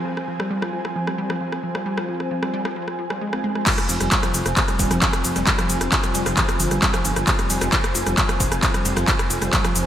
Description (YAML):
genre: driving peak-time techno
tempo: 133 BPM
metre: 4/4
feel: straight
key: F minor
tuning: A4 = 440 Hz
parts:
  - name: swarming drone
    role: drone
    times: 0.0-9.9 s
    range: F3 to C4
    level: -32 LUFS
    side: equal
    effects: built-in reverb, wide subtle chorus, sidechain pumping
  - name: ethereal airy pad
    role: texture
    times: 0.0-9.9 s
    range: F4 to Ab5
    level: -29 LUFS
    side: right 1 dB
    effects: ensemble chorus, built-in reverb, sidechain pumping
  - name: wide unison pluck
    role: riff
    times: 0.1-9.8 s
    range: F3 to C4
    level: -27 LUFS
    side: equal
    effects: tube saturation, sidechain pumping, digital delay
  - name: techno drum kit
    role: drums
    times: 0.2-9.8 s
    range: crash cymbal, handclaps, hi-hat, ride cymbal, rim click, shaker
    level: -22 LUFS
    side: equal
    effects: overdrive, small room ambience, gated reverb
  - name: breakbeat sampler-style drum kit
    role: drums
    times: 3.7-9.9 s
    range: hi-hat, ride cymbal, snare drum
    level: -35 LUFS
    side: right 1 dB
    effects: none
  - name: electronic kick drum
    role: drums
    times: 3.7-9.6 s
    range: none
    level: -23 LUFS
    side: equal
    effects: small room ambience
  - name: dark detuned saw bass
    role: bass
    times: 3.9-9.8 s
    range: Eb1 to G1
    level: -26 LUFS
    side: equal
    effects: sidechain pumping
room: moderate plate reverb, RT60 1.8 s, digital ambience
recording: bright 1980s-style digital production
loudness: -19 LUFS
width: side -11 dB against mid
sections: 0.0-3.7 A section; 3.7-9.9 B section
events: filter sweep on synth arpeggio sound 0.0-3.7; drop 3.7-9.9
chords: 0.0 Fm